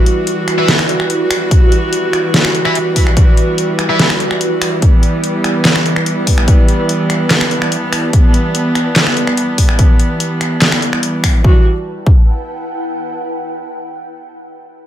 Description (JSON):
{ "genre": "heavy wobble dubstep", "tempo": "145 BPM", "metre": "4/4", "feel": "half-time", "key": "E minor", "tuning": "A4 = 437 Hz", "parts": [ { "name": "rich chamber string section", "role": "sustained chords", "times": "0.0-11.6 s", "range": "E3 to F#4", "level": "-16 LUFS", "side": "right 1 dB", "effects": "sidechain pumping" }, { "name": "ethereal airy pad", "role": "texture", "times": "0.0-13.1 s", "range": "E4 to A5", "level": "-23 LUFS", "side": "equal", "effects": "ensemble chorus, built-in reverb, sidechain pumping" }, { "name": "dubstep drum kit", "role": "drums", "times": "0.1-11.3 s", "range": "finger snaps, handclaps, hi-hat, snare drum", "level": "-15 LUFS", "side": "equal", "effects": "none" }, { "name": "distorted electric guitar", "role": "stabs", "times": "0.6-4.1 s", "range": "E4 to E5", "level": "-19 LUFS", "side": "left 1 dB", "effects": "overdrive, digital delay" }, { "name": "electronic kick drum", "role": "drums", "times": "1.5-12.2 s", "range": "none", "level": "-9 LUFS", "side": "equal", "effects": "none" } ], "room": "light reverb, digital ambience", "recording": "none", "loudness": "-10 LUFS", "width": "side -11 dB against mid", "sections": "0.0-11.4 A section; 11.4-13.1 B section", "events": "fade-out on ambient pad 0.0-11.4", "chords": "0.0 Emadd9" }